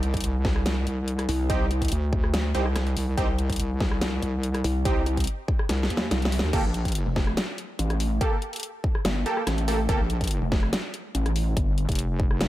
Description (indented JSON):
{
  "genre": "heavy wobble dubstep",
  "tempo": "143 BPM",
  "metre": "4/4",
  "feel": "half-time",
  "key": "G minor",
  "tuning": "A4 = 439 Hz",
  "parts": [
    { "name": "wobble bass", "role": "bass", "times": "0.0-7.0, 9.9-12.5 s", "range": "F1 to Eb2", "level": "-26 LUFS", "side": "equal", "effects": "chorus, overdrive" },
    { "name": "dubstep drum kit", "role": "drums", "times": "0.0-12.5 s", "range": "crash cymbal, hi-hat, rim click, snare drum", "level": "-30 LUFS", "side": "equal", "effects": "none" },
    { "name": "electronic kick drum", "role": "drums", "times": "0.1-12.3 s", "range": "none", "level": "-26 LUFS", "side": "equal", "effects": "none" },
    { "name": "pulsing pluck wobble bass", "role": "bass", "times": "1.3-1.9, 4.6-11.9 s", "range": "F1 to Eb2", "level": "-25 LUFS", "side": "equal", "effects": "distortion, chorus, overdrive" },
    { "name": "supersaw stab", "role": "stabs", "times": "1.5-10.0 s", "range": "Bb3 to A4", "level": "-31 LUFS", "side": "right 2 dB", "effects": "tape echo" }
  ],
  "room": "digital ambience",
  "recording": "none",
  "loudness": "-23 LUFS",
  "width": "side -15 dB against mid",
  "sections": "0.0-6.5 A section; 6.5-12.5 A section",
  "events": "drop 0.0-6.5, 6.5-12.5; drum fill 5.7-6.5",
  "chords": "0.0 Cm; 6.5 Gmadd9",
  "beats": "0.24 0.66 1.08 | 1.50 1.92 2.34 2.76 | 3.18 3.60 4.01 4.43 | 4.85 5.27 5.69 6.11 | 6.53 6.95 7.37 7.79 | 8.21 8.63 9.05 9.47 | 9.89 10.31 10.73 11.15 | 11.57 11.99 12.41"
}